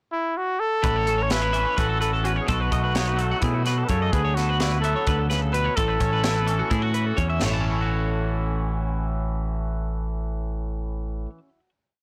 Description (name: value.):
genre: math rock and midwest emo.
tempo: 255 BPM (eighths).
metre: 7/8.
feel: straight.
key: A major.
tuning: A4 = 440 Hz.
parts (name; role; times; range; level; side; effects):
warm trumpet; melody; 0.1-6.9 s; E4 to C#5; -28 LUFS; equal; none.
twangy electric guitar; accompaniment; 0.8-11.7 s; E2 to F#4; -33 LUFS; equal; none.
twelve-string electric guitar; arpeggios; 0.8-11.4 s; F#4 to A5; -32 LUFS; equal; subtle chorus.
picked electric bass; bass; 0.8-11.3 s; A1 to B2; -28 LUFS; equal; none.
crisp fusion drum kit; drums; 0.8-7.5 s; crash cymbal, hi-hat, kick drum, snare drum, toms; -31 LUFS; equal; none.
room: little or no reverb.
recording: blown-out, overdriven recording, overdrive.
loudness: -24 LUFS.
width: mono.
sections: 0.0-0.8 pickup bar; 0.8-7.4 A section; 7.4-10.7 final chord.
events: none.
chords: 0.0 N.C.; 0.8 A6; 2.5 B7; 4.1 D69; 5.8 A69; 7.4 A6.